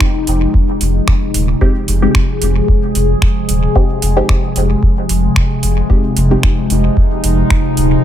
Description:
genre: dub techno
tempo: 112 BPM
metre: 4/4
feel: swing 54% on 16ths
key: F minor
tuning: A4 = 440 Hz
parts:
  - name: warbly tape-like pad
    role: sustained chords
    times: 0.0-8.0 s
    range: C3 to Ab4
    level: -16 LUFS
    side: left 1 dB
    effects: chorus, built-in reverb, phaser, sidechain pumping
  - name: filtered dub chord stab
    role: stabs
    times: 0.0-6.5 s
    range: Ab3 to G4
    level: -20 LUFS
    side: left 1 dB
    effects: chorus, phaser, sidechain pumping, dub echo
  - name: booming analog drum machine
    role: drums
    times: 0.0-7.9 s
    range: finger snaps, hi-hat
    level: -21 LUFS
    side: right 2 dB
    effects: dub echo
  - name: electronic kick drum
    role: drums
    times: 0.0-7.6 s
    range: none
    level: -13 LUFS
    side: equal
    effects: none
  - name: warm sub bass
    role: bass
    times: 0.3-8.0 s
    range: Eb1 to F1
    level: -15 LUFS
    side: equal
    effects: sidechain pumping
room: digital ambience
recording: none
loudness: -11 LUFS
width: side -11 dB against mid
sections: 0.0-8.0 A section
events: filter sweep on synth stab 0.0-8.0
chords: 0.0 Fm7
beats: 0.01 0.54 1.08 | 1.61 2.15 2.68 3.22 | 3.75 4.29 4.83 5.36 | 5.90 6.43 6.97 7.50 | 8.04

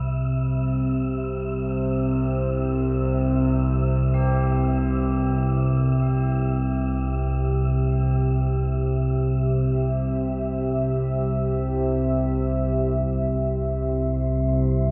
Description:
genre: dark ambient drone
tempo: free time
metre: none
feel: none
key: C major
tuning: A4 = 439 Hz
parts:
  - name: tubular bells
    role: arpeggios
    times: 0.0-13.0 s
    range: C4 to G4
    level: -41 LUFS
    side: equal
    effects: delay
  - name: analog drone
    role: drone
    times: 0.0-14.9 s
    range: C2 to C3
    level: -24 LUFS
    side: equal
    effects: chorus
  - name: wind-like tuned noise texture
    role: texture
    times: 0.0-14.9 s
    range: C5 to E5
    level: -41 LUFS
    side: equal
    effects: built-in reverb
  - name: deep dark ambient pad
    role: sustained chords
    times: 5.9-14.9 s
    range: G4 to E5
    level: -31 LUFS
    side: equal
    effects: chorus, built-in reverb
  - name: impact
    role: percussion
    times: 13.0-13.2 s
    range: none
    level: barely audible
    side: none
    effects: none
room: wet cathedral reverb, RT60 6.1 s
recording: in a vast, echoing space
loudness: -23 LUFS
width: mono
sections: 0.0-13.0 A section; 13.0-14.9 B section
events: fade-in on tubular bells 0.0-13.0; fade-out on synth texture 0.0-13.0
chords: 0.0 C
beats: free time

